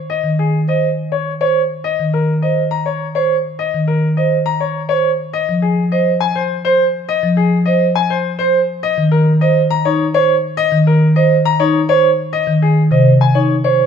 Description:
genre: classical, minimalist pattern music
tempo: 103 BPM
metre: 3/4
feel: straight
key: unclear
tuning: A4 = 441 Hz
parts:
  - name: bright baby grand piano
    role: melody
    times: 0.1-13.8 s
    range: Ab4 to Bb5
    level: -18 LUFS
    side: left 10 dB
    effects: none
  - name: marimba with soft mallets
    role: accompaniment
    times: 0.2-13.1 s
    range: C3 to F3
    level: -16 LUFS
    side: equal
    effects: none
  - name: vibraphone with medium mallets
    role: arpeggios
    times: 0.7-13.8 s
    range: Eb4 to C5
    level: -17 LUFS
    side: right 7 dB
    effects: none
room: wet recital hall reverb, RT60 1.5 s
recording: none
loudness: -12 LUFS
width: side -7 dB against mid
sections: 0.0-13.9 A section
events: none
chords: 0.0 Absus4 (rootless); 5.3 Fm7; 8.8 Eb5; 12.3 Absus4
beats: | 0.10 0.68 1.26 | 1.84 2.42 3.01 | 3.59 4.17 4.75 | 5.34 5.92 6.50 | 7.09 7.67 8.25 | 8.83 9.42 10.00 | 10.58 11.16 11.75 | 12.33 12.91 13.49

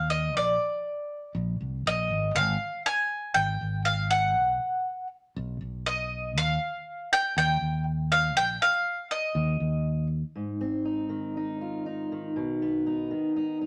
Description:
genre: indie folk with a building arrangement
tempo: 120 BPM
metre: 4/4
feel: straight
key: unclear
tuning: A4 = 440 Hz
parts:
  - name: bowl-back mandolin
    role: melody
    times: 0.0-10.1 s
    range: D5 to Ab5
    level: -28 LUFS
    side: equal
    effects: none
  - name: fingered electric bass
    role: bass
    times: 0.0-10.2 s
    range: Ab1 to Eb2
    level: -32 LUFS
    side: equal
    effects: none
  - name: fingerpicked steel-string acoustic guitar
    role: accompaniment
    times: 10.4-13.7 s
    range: Ab2 to F4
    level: -31 LUFS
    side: equal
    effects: none
room: moderate studio reverb, RT60 0.8 s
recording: none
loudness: -28 LUFS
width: mono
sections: 0.0-10.3 A section; 10.3-13.7 B section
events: none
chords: 0.3 Bb; 2.4 Fmadd9/Ab; 4.4 B; 6.4 Eb; 8.4 Bb5; 9.3 N.C.; 10.3 Ab6; 12.4 B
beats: | 0.35 0.85 1.35 1.85 | 2.35 2.85 3.36 3.86 | 4.36 4.86 5.36 5.86 | 6.36 6.86 7.36 7.85 | 8.35 8.85 9.35 9.85 | 10.35 10.85 11.35 11.85 | 12.36 12.86 13.36

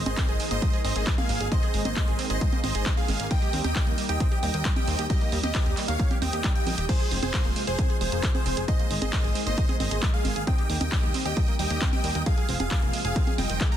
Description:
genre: uplifting trance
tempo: 134 BPM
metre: 4/4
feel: straight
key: Ab major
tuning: A4 = 441 Hz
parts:
  - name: big supersaw lead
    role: melody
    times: 0.0-13.8 s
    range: G4 to Bb5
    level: -33 LUFS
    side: right 1 dB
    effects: phaser, sidechain pumping, ping-pong delay
  - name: plucky unison lead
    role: second line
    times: 0.0-13.8 s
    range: C5 to Bb5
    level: -35 LUFS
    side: equal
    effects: sidechain pumping, tape echo
  - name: lush unison pad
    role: sustained chords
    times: 0.0-13.8 s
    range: C3 to Ab4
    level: -36 LUFS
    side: equal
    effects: chorus, sidechain pumping
  - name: plucky analog bass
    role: bass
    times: 0.0-13.6 s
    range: Eb1 to Eb2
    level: -29 LUFS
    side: equal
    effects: sidechain pumping
  - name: wide unison pluck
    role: arpeggios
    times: 0.1-13.8 s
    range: Eb3 to Ab4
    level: -35 LUFS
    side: right 4 dB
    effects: cassette tape, sidechain pumping, tape echo
  - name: punchy analog drum machine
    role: drums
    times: 0.1-13.8 s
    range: congas, crash cymbal, handclaps, hi-hat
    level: -32 LUFS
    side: right 2 dB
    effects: small room ambience
  - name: electronic kick drum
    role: drums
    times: 0.2-13.7 s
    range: none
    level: -25 LUFS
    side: equal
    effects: small room ambience
room: digital ambience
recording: dense, heavily limited modern master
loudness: -23 LUFS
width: side -10 dB against mid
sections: 0.0-13.8 A section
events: none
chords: 0.0 Absus2; 3.3 Eb; 6.9 Fm; 8.7 Absus2; 10.5 Eb; 12.3 Fm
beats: 0.17 0.62 1.07 | 1.52 1.97 2.41 2.86 | 3.31 3.76 4.20 4.65 | 5.10 5.55 6.00 6.44 | 6.89 7.34 7.79 8.23 | 8.68 9.13 9.58 10.02 | 10.47 10.92 11.37 11.82 | 12.26 12.71 13.16 13.61

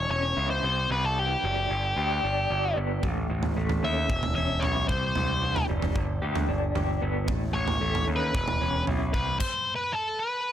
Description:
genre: quiet-loud alternative rock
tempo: 113 BPM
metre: 4/4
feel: straight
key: unclear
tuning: A4 = 437 Hz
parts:
  - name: octave-fuzz lead guitar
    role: melody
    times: 0.0-10.5 s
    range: G4 to E5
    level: -28 LUFS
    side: left 1 dB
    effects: distortion, analog delay
  - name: electric guitar through a small old amp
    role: arpeggios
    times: 0.0-9.4 s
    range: E2 to G4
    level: -32 LUFS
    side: left 1 dB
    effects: tremolo
  - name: growling picked electric bass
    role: bass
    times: 0.0-9.4 s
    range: E1 to D#2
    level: -29 LUFS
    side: equal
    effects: overdrive
  - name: big rock drum kit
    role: drums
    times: 3.0-9.5 s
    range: crash cymbal, kick drum, toms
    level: -30 LUFS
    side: right 1 dB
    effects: none
room: little or no reverb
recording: none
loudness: -24 LUFS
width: side -10 dB against mid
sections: 0.0-10.5 A section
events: stop 9.4-10.5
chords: 0.0 C#mmaj7/E; 0.6 C; 1.7 G; 3.0 A; 4.1 E5; 4.9 C; 6.0 G; 7.3 A; 8.3 E5; 9.1 Amadd9/C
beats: 0.37 | 0.90 1.43 1.97 2.50 | 3.03 3.56 4.10 4.63 | 5.16 5.69 6.22 6.75 | 7.29 7.82 8.35 8.88 | 9.40 9.93 10.46

